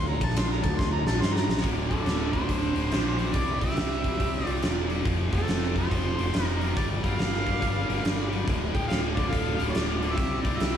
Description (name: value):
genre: blues rock power trio and southern rock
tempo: 140 BPM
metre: 4/4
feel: swing 64% on 8ths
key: D minor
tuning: A4 = 440 Hz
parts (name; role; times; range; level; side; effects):
- mellow harmonica; melody; 0.0-10.8 s; A4 to C6; -33 LUFS; equal; overdrive, slapback echo
- fuzz fingered electric bass; bass; 0.0-10.8 s; D1 to G2; -29 LUFS; equal; overdrive
- huge arena drum kit; drums; 0.2-10.7 s; hi-hat, kick drum, ride cymbal, snare drum; -27 LUFS; equal; none
- tight distorted guitar; riff; 1.6-10.8 s; D2 to C4; -32 LUFS; left 2 dB; distortion, slapback echo
- bluesy overdriven lead guitar; second line; 1.9-10.8 s; C4 to Bb4; -35 LUFS; right 3 dB; distortion, analog delay
room: moderate lush hall reverb, RT60 2.1 s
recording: big arena sound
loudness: -24 LUFS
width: side -9 dB against mid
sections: 0.0-1.6 A section; 1.6-10.8 B section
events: harmonica solo 0.0-1.6; drum fill 0.8-1.6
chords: 0.0 Gmadd11; 1.6 D5; 3.3 C; 5.1 F; 6.8 Gm; 8.5 D5; 10.2 C5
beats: 0.36 0.79 1.21 | 1.64 2.06 2.49 2.92 | 3.34 3.77 4.20 4.63 | 5.05 5.48 5.91 6.34 | 6.77 7.19 7.62 8.05 | 8.47 8.90 9.33 9.75 | 10.18 10.61